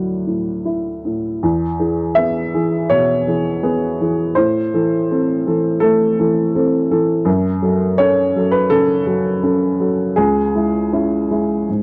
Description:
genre	neoclassical minimalist piano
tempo	82 BPM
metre	4/4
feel	rubato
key	E major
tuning	A4 = 444 Hz
part	dark upright piano	solo	0.0-11.8 s	C#2 to E5	-17 LUFS	equal	none
room	light reverb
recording	dry, close 1970s-style studio recording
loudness	-17 LUFS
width	mono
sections	0.0-1.4 A section; 1.4-11.8 B section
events	none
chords	0.0 Dadd9; 1.4 E; 4.4 Am; 7.3 F#m; 10.2 C#m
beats	0.65 | 1.43 2.17 2.90 3.63 | 4.36 5.10 5.83 6.55 | 7.26 7.98 8.70 9.42 | 10.16 10.92 11.68

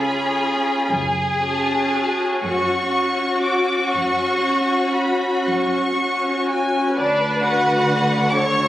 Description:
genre	classical, slow romantic movement for string orchestra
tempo	38-45 BPM (dotted quarters)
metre	12/8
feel	rubato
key	F# minor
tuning	A4 = 436 Hz
part	rich studio violin section	melody	0.0-8.7 s	D5 to D6	-23 LUFS	left 1 dB	none
part	rich studio violin section	second line	0.0-8.7 s	D4 to C#5	-21 LUFS	left 1 dB	none
part	rich studio viola section	accompaniment	0.0-8.7 s	C#4 to B4	-23 LUFS	right 1 dB	none
part	rich studio double bass section	bass	0.0-8.7 s	F#1 to D2	-27 LUFS	equal	none
part	warm studio cello section	bass	0.0-8.7 s	F#2 to D3	-28 LUFS	equal	none
room	wet recital hall reverb, RT60 1.7 s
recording	recorded on a phone in the room, club reverb, compression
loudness	-17 LUFS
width	side -14 dB against mid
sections	0.0-7.0 A section; 7.0-8.7 B section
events	none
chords	0.0 C#7; 0.9 F#5; 7.0 D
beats	| 0.89 2.42 3.93 5.46 | 6.98 8.36

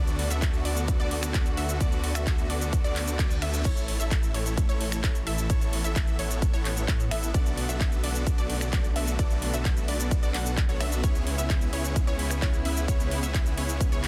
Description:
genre	EDM, festival progressive house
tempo	130 BPM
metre	4/4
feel	straight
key	A major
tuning	A4 = 440 Hz
part	rich studio string section	sustained chords	0.0-14.1 s	C#3 to F#4	-40 LUFS	equal	sidechain pumping
part	unison pluck	arpeggios	0.0-14.1 s	C#5 to F#5	-40 LUFS	equal	sidechain pumping, dub echo
part	supersaw chords	riff	0.0-14.1 s	B3 to F#5	-36 LUFS	equal	sidechain pumping, dub echo
part	detuned saw bass	bass	0.0-14.1 s	A1 to A2	-32 LUFS	equal	sidechain pumping
part	big-room dance drum kit	drums	0.1-14.1 s	cabasa, crash cymbal, finger snaps, handclaps, hi-hat	-37 LUFS	equal	none
part	electronic kick drum	drums	0.4-13.9 s	none	-28 LUFS	equal	none
part	reverse cymbal	sound effects	3.1-3.7 s	none	-46 LUFS	equal	none
room	little or no reverb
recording	dense, heavily limited modern master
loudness	-27 LUFS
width	mono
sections	0.0-14.1 A section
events	reverse cymbal 3.1-3.7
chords	0.0 D6; 3.7 A; 7.3 Bm7; 11.0 C#m7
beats	0.42 0.88 1.34 | 1.81 2.27 2.73 3.19 | 3.65 4.11 4.58 5.04 | 5.50 5.96 6.42 6.88 | 7.34 7.81 8.27 8.73 | 9.19 9.65 10.11 10.57 | 11.04 11.50 11.96 12.42 | 12.88 13.35 13.81

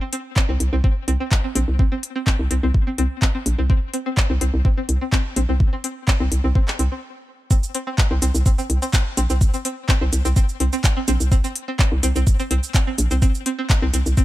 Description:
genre	minimal techno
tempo	126 BPM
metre	4/4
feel	straight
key	unclear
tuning	A4 = 440 Hz
part	string-like resonator pluck	riff	0.0-14.2 s	C4	-27 LUFS	equal	chorus, phaser, sidechain pumping, ping-pong delay
part	minimal click drum kit	drums	0.1-14.2 s	cabasa, handclaps, hi-hat	-25 LUFS	equal	none
part	electronic kick drum	drums	0.4-14.2 s	none	-17 LUFS	equal	overdrive
part	hollow knocking FM bass	bass	0.5-14.1 s	Bb1 to C2	-19 LUFS	equal	tube saturation, sidechain pumping
room	little or no reverb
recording	none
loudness	-17 LUFS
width	side -16 dB against mid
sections	0.0-7.5 A section; 7.5-14.2 B section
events	stop 7.0-7.5; drop 7.5-14.2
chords	none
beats	0.36 0.84 1.32 | 1.79 2.27 2.75 3.22 | 3.70 4.17 4.65 5.13 | 5.60 6.08 6.55 7.03 | 7.51 7.98 8.46 8.94 | 9.41 9.89 10.36 10.84 | 11.32 11.79 12.27 12.74 | 13.22 13.70 14.17

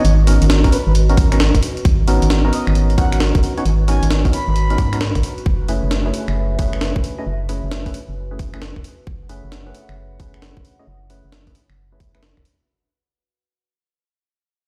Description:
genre	UK garage, two-step garage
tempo	133 BPM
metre	4/4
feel	swing 65% on 16ths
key	unclear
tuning	A4 = 440 Hz
part	percussive organ stab	stabs	0.0-12.2 s	A3 to D#5	-26 LUFS	equal	lush chorus, delay
part	organ-like FM bass	bass	0.0-12.4 s	E1 to G#2	-19 LUFS	equal	sidechain pumping
part	breakbeat sampler-style drum kit	drums	0.0-12.6 s	finger snaps, hi-hat, snare drum	-25 LUFS	equal	none
part	warbly tape-like pad	texture	0.0-12.7 s	F#4 to F#5	-34 LUFS	equal	chorus, built-in reverb, sidechain pumping
part	electronic kick drum	drums	0.6-12.4 s	none	-20 LUFS	equal	overdrive
part	breathy flute-like synth lead	melody	0.7-5.0 s	B4 to B5	-29 LUFS	equal	tremolo, lush chorus, delay
room	light reverb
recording	played on a big sound system in a bare room, stone room reverb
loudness	-17 LUFS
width	mono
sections	0.0-12.7 A section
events	fade-out 0.0-12.7; filter sweep on FM bass 0.0-12.7; filter sweep on synth stab 0.0-12.7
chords	0.0 G#m11; 5.2 F#m11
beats	| 0.05 0.50 0.95 1.40 | 1.85 2.30 2.75 3.20 | 3.65 4.11 4.56 5.01 | 5.46 5.91 6.36 6.81 | 7.26 7.71 8.17 8.62 | 9.07 9.52 9.97 10.42 | 10.87 11.32 11.78 12.23

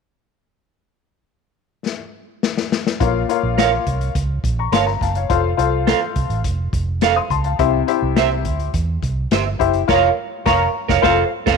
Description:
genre	uptempo 1960s-style soul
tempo	105 BPM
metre	4/4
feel	straight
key	Bb harmonic minor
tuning	A4 = 439 Hz
part	vintage drum kit	drums	1.9-11.6 s	crash cymbal, hi-hat, kick drum, snare drum	-22 LUFS	left 4 dB	none
part	clear upright piano	accompaniment	3.0-11.2 s	Bb2 to Eb6	-20 LUFS	left 12 dB	none
part	vintage muted fingered electric bass	bass	3.0-11.6 s	F1 to E2	-21 LUFS	right 2 dB	none
part	semi-hollow electric guitar	stabs	3.6-11.6 s	G4 to F5	-19 LUFS	right 14 dB	lush chorus
room	light reverb, small room ambience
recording	1960s-style stereo with parts hard left and right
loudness	-16 LUFS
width	side -5 dB against mid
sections	0.7-3.0 A section; 3.0-11.6 B section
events	drum fill 1.9-3.0; band accent 9.9-11.6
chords	0.7 N.C.; 3.0 Bbm; 5.3 F; 7.6 C; 9.9 Bbm/F; 11.0 F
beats	| 0.71 1.28 1.86 2.43 | 3.00 3.58 4.15 4.72 | 5.30 5.87 6.45 7.02 | 7.59 8.17 8.74 9.31 | 9.89 10.46 11.04

